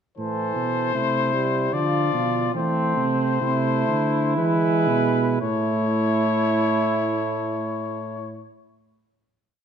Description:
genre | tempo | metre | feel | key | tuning
classical, imitative canzona for brass ensemble | 54-80 BPM | 3/4 | straight | A minor | A4 = 440 Hz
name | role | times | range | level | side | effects
warm trumpet | melody | 0.2-8.5 s | B4 to D5 | -26 LUFS | left 8 dB | none
warm flugelhorn | second line | 0.2-8.5 s | C4 to A4 | -26 LUFS | right 4 dB | none
warm euphonium | accompaniment | 0.2-8.5 s | E3 to A3 | -28 LUFS | right 2 dB | none
dark tuba | bass | 0.2-8.5 s | A2 to E3 | -25 LUFS | right 2 dB | none
room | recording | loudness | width
moderate recital hall reverb, RT60 1.3 s | none | -20 LUFS | side -8 dB against mid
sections
0.2-5.4 exposition; 5.4-9.6 final chord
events
slowing down 0.2-7.1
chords
0.2 Am; 1.7 Bdim/D; 2.5 Am; 4.4 E; 5.4 A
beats
| 0.18 0.94 1.73 | 2.54 3.41 4.37 | 5.42 6.52 7.62

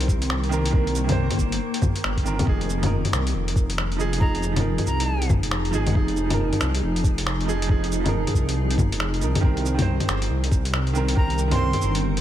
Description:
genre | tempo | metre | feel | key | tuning
future garage | 138 BPM | 4/4 | swing 62% on 16ths | F minor | A4 = 440 Hz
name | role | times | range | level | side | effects
bright upright piano | accompaniment | 0.0-12.2 s | Eb3 to C5 | -29 LUFS | right 4 dB | sidechain pumping, dub echo
granular cloud pad | sustained chords | 0.0-12.2 s | Eb3 to Bb4 | -30 LUFS | equal | built-in reverb, sidechain pumping
dark detuned saw bass | bass | 0.0-12.2 s | F1 to F2 | -25 LUFS | equal | sidechain pumping
lo-fi sampler-style drum kit | drums | 0.0-12.2 s | bongos, cabasa, finger snaps, hi-hat | -26 LUFS | left 2 dB | overdrive
electronic kick drum | drums | 0.1-11.3 s | none | -21 LUFS | equal | overdrive
breathy bright jazz flute | melody | 4.2-5.3, 11.2-12.0 s | Bb5 to C6 | -32 LUFS | right 1 dB | dub echo
room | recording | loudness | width
light reverb | none | -20 LUFS | side -12 dB against mid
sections
0.0-12.2 A section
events
none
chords
0.0 Cm7; 2.5 Fm7; 9.4 Cm7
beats
0.30 | 0.74 1.17 1.61 2.04 | 2.48 2.91 3.35 3.78 | 4.21 4.65 5.08 5.52 | 5.95 6.39 6.82 7.26 | 7.69 8.13 8.56 9.00 | 9.43 9.87 10.30 10.74 | 11.17 11.61 12.04

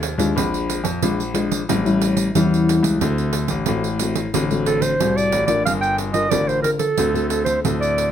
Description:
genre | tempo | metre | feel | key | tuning
samba and choro | 91 BPM | 4/4 | straight | G minor | A4 = 438 Hz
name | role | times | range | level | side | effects
nylon-string guitar | accompaniment | 0.0-8.1 s | A2 to Bb4 | -22 LUFS | left 3 dB | none
bright concert grand piano | bass | 0.0-8.1 s | G1 to F2 | -23 LUFS | left 1 dB | none
pandeiro | percussion | 0.0-8.1 s | none | -25 LUFS | right 8 dB | none
clear clarinet | melody | 4.7-8.1 s | A4 to G5 | -20 LUFS | right 2 dB | none
room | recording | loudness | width
moderate studio reverb, RT60 0.7 s | none | -17 LUFS | side -9 dB against mid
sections
0.0-5.7 A section; 5.7-8.1 B section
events
none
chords
0.4 Bb7; 1.7 A7; 3.0 D7; 5.7 Gm7; 7.0 D7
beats
| 0.36 1.02 1.69 2.35 | 3.01 3.67 4.33 5.00 | 5.66 6.32 6.98 7.64

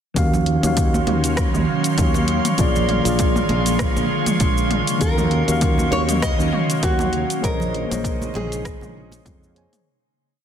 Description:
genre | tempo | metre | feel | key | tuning
sunset chillout | 99 BPM | 4/4 | swing 56% on 16ths | Eb dorian | A4 = 442 Hz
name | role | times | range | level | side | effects
mellow tine electric piano | accompaniment | 0.1-9.9 s | Eb3 to Ab5 | -24 LUFS | equal | auto-pan, low-pass filter, tape echo
ethereal airy pad | sustained chords | 0.6-9.8 s | Db3 to F5 | -25 LUFS | equal | ensemble chorus, built-in reverb
sustaining fretless electric bass | bass | 0.2-9.7 s | Bb1 to F2 | -23 LUFS | equal | analog chorus
deep house drum kit | drums | 0.2-9.8 s | hi-hat, rim click, shaker, toms | -26 LUFS | right 1 dB | overdrive
electronic kick drum | drums | 0.2-9.4 s | none | -22 LUFS | equal | overdrive
drifting glass-harmonics texture | texture | 0.6-9.9 s | Db5 to C6 | -29 LUFS | right 1 dB | chorus, built-in reverb
congas | percussion | 0.3-9.2 s | none | -28 LUFS | right 3 dB | none
nylon-string guitar | melody | 5.0-9.2 s | Gb4 to Eb5 | -26 LUFS | left 1 dB | digital delay
room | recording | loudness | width
moderate scoring stage reverb, RT60 1.7 s | dense, heavily limited modern master | -17 LUFS | side -8 dB against mid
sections
0.2-9.9 groove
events
filter sweep on tine electric piano 0.2-9.9; fade-out 6.6-9.9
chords
0.2 Ebm9; 2.6 Bb7; 5.0 Ebm9; 7.4 Bbm11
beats
| 0.16 0.77 1.38 1.98 | 2.59 3.19 3.80 4.41 | 5.01 5.62 6.22 6.83 | 7.44 8.04 8.65 9.25

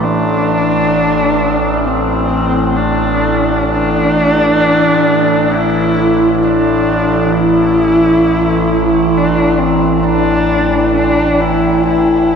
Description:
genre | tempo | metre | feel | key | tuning
ambient | 66 BPM | 4/4 | straight | A minor | A4 = 443 Hz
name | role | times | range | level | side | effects
warm horsehead fiddle | melody | 0.0-12.4 s | C4 to E4 | -13 LUFS | equal | shimmer reverb, ping-pong delay
dark analog pad | sustained chords | 0.0-12.4 s | E3 to A5 | -17 LUFS | equal | chorus, phaser, shimmer reverb
overtone-sweeping drone | drone | 0.0-12.4 s | A1 | -15 LUFS | equal | chorus, built-in reverb
room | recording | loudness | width
wet cathedral reverb, RT60 5.7 s | worn, warbling old tape, cassette tape, warbly pitch drift | -10 LUFS | side -6 dB against mid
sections
0.0-12.4 A section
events
fade-in on analog synth pad 0.0-12.4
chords
0.0 A5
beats
| 0.04 0.95 1.86 2.77 | 3.68 4.59 5.50 6.40 | 7.31 8.22 9.13 10.04 | 10.95 11.86

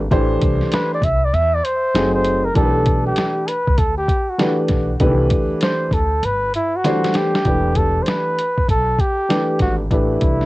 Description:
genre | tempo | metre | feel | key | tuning
hip hop, jazz-hop | 98 BPM | 4/4 | swing 65% on 16ths | E minor | A4 = 438 Hz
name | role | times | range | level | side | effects
upright bass | bass | 0.0-10.4 s | E1 to E2 | -22 LUFS | equal | none
dark grand piano | accompaniment | 0.1-10.5 s | D#3 to C5 | -19 LUFS | equal | cassette tape
lo-fi sampler-style drum kit | drums | 0.1-10.5 s | hi-hat, kick drum, snare drum | -20 LUFS | equal | cassette tape
mellow flugelhorn | melody | 0.7-10.5 s | E4 to E5 | -20 LUFS | equal | none
room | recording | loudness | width
light reverb | home recording on cassette, nothing above 10.3 kHz | -15 LUFS | side -19 dB against mid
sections
0.0-7.5 A section; 7.5-10.5 B section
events
flugelhorn solo 0.0-7.5; drum fill 6.8-7.5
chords
0.1 Am7; 1.9 F#dim7; 2.6 G/B; 5.0 Cmaj9; 7.5 Em7; 9.9 Am9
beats
| 0.11 0.72 1.33 1.95 | 2.56 3.17 3.78 4.40 | 5.01 5.62 6.23 6.84 | 7.46 8.07 8.68 9.29 | 9.91

